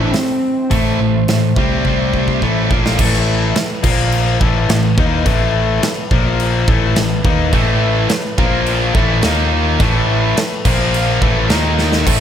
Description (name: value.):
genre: hard rock.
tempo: 106 BPM.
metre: 4/4.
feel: straight.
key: unclear.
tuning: A4 = 440 Hz.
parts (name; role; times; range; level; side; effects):
lead guitar through a small cranked amp; melody; 0.0-2.7 s; A3 to D4; -20 LUFS; equal; overdrive, digital delay.
clear French horn section; sustained chords; 0.0-12.2 s; D#3 to C5; -27 LUFS; equal; none.
distorted electric guitar; riff; 0.0-12.2 s; A2 to D#4; -19 LUFS; left 8 dB; overdrive.
scooped high-gain guitar; riff; 0.0-3.0, 7.5-12.2 s; A2 to D#4; -21 LUFS; right 11 dB; distortion.
picked electric bass; bass; 0.0-12.2 s; A1 to D#2; -18 LUFS; right 1 dB; none.
big rock drum kit; drums; 0.1-12.2 s; crash cymbal, hi-hat, kick drum, snare drum; -18 LUFS; right 1 dB; none.
scooped high-gain guitar; riff; 3.0-12.2 s; A2 to D#4; -22 LUFS; equal; distortion.
room: light reverb.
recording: none.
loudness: -12 LUFS.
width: side -9 dB against mid.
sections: 0.0-3.0 A section; 3.0-12.1 B section.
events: drum fill 1.8-3.0, 11.8.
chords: 0.0 Am; 1.8 C5; 2.4 Am; 3.0 A5; 3.8 Bb5; 4.4 A5; 6.1 Bb5; 6.7 A5; 8.4 Bb5; 8.9 A5; 9.2 D#5; 9.8 A5; 10.7 Bb5; 11.2 A5; 11.5 D#5.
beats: 0.14 | 0.71 1.28 1.85 2.42 | 2.98 3.55 4.12 4.69 | 5.26 5.83 6.39 6.96 | 7.53 8.10 8.66 9.23 | 9.80 10.37 10.93 11.50 | 12.07.